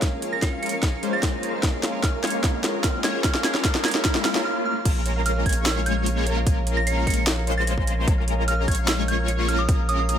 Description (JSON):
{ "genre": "future bass", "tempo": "149 BPM", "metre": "4/4", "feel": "half-time", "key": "Bb minor", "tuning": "A4 = 436 Hz", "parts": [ { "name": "shimmering ambient pad", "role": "sustained chords", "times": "0.0-4.4 s", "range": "Db4 to F5", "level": "-38 LUFS", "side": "left 1 dB", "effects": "none" }, { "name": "concert harp", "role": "arpeggios", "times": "0.0-10.2 s", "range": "Ab4 to F5", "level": "-34 LUFS", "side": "right 2 dB", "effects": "sidechain pumping, low-pass filter, ping-pong delay" }, { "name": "big bright polysynth", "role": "riff", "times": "0.0-10.2 s", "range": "Ab3 to Db5", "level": "-28 LUFS", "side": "left 2 dB", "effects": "chorus, phaser, sidechain pumping" }, { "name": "saturated sub bass", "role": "bass", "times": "0.0-10.2 s", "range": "Bb1", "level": "-27 LUFS", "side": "equal", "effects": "sidechain pumping, high-pass filter" }, { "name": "electronic kick drum", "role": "drums", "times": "0.0-9.8 s", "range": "none", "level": "-23 LUFS", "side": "equal", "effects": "small room ambience" }, { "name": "trap drum kit", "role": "drums", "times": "0.0-10.2 s", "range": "crash cymbal, hi-hat, snare drum", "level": "-26 LUFS", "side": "equal", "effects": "small room ambience" }, { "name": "riser and swell", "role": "sound effects", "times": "1.0-4.9 s", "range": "none", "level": "-33 LUFS", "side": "equal", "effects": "none" }, { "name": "soft synth bell", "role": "melody", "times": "0.3-10.2 s", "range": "Eb6 to Db7", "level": "-29 LUFS", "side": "right 2 dB", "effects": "chorus, sidechain pumping, ping-pong delay" }, { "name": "airy dreamy lead", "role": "arpeggios", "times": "4.9-10.2 s", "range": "Bb5 to Db6", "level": "-35 LUFS", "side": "right 1 dB", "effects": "chorus, sidechain pumping" } ], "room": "light reverb", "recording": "none", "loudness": "-20 LUFS", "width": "side -9 dB against mid", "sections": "0.0-4.9 A section; 4.9-10.2 B section", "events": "build-up 0.0-4.9; drum fill 0.0-4.5; filter sweep on analog polysynth 0.0-4.9; riser 1.0-4.5; swell 4.0-4.9; break 4.5-4.9; drop 4.9-10.2", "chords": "0.0 Bbm7" }